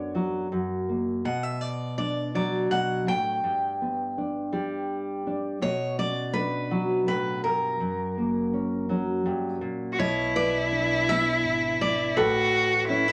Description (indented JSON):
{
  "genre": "folk",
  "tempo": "82 BPM",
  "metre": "3/4",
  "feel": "straight",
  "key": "B minor",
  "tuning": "A4 = 442 Hz",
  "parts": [
    { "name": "picked steel-string acoustic guitar", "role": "melody", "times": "0.0-13.1 s", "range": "A#4 to G5", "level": "-32 LUFS", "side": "equal", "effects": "none" },
    { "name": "nylon-string guitar", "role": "accompaniment", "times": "0.0-13.1 s", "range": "F#2 to G4", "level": "-31 LUFS", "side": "equal", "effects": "none" },
    { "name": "clear cello", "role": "second line", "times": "9.9-13.1 s", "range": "E4 to F#4", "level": "-26 LUFS", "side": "equal", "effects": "none" },
    { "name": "upright bass", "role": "bass", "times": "10.0-13.1 s", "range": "G#1 to B1", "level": "-40 LUFS", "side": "equal", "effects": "none" },
    { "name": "felt-muted upright piano", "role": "arpeggios", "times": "10.4-13.1 s", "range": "A4 to B4", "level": "-31 LUFS", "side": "equal", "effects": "none" }
  ],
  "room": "wet club reverb, RT60 0.5 s",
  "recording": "none",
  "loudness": "-27 LUFS",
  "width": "mono",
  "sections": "0.0-10.0 A section; 10.0-13.1 A section",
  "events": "none",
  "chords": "0.0 Bm/F#; 0.5 F#; 1.2 Bm; 3.4 G; 5.6 Bmadd9; 7.8 F#; 10.0 Bm; 12.2 Aadd9"
}